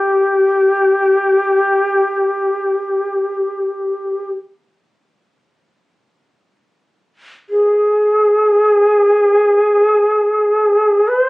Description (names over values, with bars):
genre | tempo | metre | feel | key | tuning
japanese traditional, Japanese chamber music | free time | none | none | unclear | A4 = 440 Hz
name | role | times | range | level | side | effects
reedy shakuhachi | solo | 0.0-11.3 s | G4 to C5 | -12 LUFS | equal | none
room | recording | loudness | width
light reverb | recorded on a phone in the room, studio ambience | -12 LUFS | side -22 dB against mid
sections
0.0-11.3 A section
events
none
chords
none